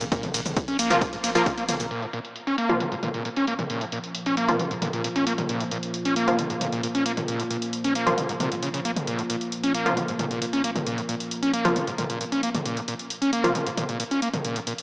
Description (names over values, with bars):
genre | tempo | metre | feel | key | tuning
driving peak-time techno | 134 BPM | 4/4 | straight | Bb minor | A4 = 439 Hz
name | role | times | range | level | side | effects
screaming distorted acid line | riff | 0.0-14.7 s | Ab2 to Db4 | -26 LUFS | equal | distortion, wide subtle chorus, sidechain pumping, tape echo
saturated sub bass | bass | 0.0-1.9 s | Bb1 | -42 LUFS | equal | tube saturation, sidechain pumping, low-pass filter
punchy analog drum machine | drums | 0.0-14.8 s | hi-hat, ride cymbal, shaker, toms | -30 LUFS | equal | overdrive, low-pass filter on hats, low-pass filter on perc, low-pass filter on cymbals, low-pass filter on toms, low-pass filter on room
electronic kick drum | drums | 0.1-1.6 s | none | -28 LUFS | equal | none
supersaw stab | stabs | 0.9-13.5 s | F3 to F4 | -26 LUFS | equal | sidechain pumping, low-pass filter, tape echo
analog drone | drone | 3.8-14.8 s | Bb2 to F3 | -33 LUFS | equal | chorus, sidechain pumping
room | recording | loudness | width
wet lush hall reverb, RT60 2.3 s | dry, gritty hardware recording, small speaker sound | -23 LUFS | side -25 dB against mid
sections
0.0-1.9 A section; 1.9-14.8 B section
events
drop 0.0-1.9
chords
0.0 Bb5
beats
| 0.12 0.57 1.01 1.46 | 1.91 2.36 2.80 3.25 | 3.70 4.15 4.59 5.04 | 5.49 5.94 6.39 6.83 | 7.28 7.73 8.18 8.62 | 9.07 9.52 9.97 10.42 | 10.86 11.31 11.76 12.21 | 12.65 13.10 13.55 14.00 | 14.45